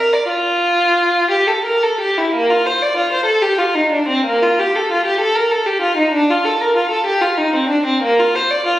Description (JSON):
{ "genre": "classical, baroque-style suite movement for unaccompanied violin", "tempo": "56-66 BPM (dotted quarters)", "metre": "6/8", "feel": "rubato", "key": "Bb major", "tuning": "A4 = 440 Hz", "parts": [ { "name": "rich violin", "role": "solo", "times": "0.0-8.8 s", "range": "Bb3 to D5", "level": "-13 LUFS", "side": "equal", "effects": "none" } ], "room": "wet recital hall reverb, RT60 1.7 s", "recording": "recorded on a phone in the room, studio reverb", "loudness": "-13 LUFS", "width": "side -14 dB against mid", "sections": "0.0-2.3 A section; 2.3-8.8 A section", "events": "none", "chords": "none", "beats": "| 0.28 1.30 | 2.34 3.28 | 4.26 5.22 | 6.15 7.06 | 8.02" }